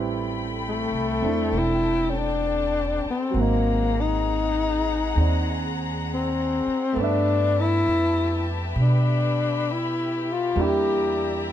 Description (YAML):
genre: jazz ballad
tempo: 66 BPM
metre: 4/4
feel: swing 67% on 8ths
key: A minor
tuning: A4 = 443 Hz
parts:
  - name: warm grand piano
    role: accompaniment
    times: 0.0-11.5 s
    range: F#3 to E5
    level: -30 LUFS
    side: right 7 dB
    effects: none
  - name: warm studio string section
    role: sustained chords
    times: 0.0-11.5 s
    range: C4 to B5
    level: -32 LUFS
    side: left 4 dB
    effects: none
  - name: upright bass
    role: bass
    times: 0.0-11.5 s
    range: E1 to B2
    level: -26 LUFS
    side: right 1 dB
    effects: none
  - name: breathy tenor saxophone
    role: melody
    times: 0.7-11.5 s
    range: A3 to G4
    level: -24 LUFS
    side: left 4 dB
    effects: plate reverb
room: light reverb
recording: close, detailed microphones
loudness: -21 LUFS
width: side -11 dB against mid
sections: 0.0-11.5 A section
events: none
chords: 0.0 Am9; 3.3 G#9; 7.0 G69; 10.6 Em7b5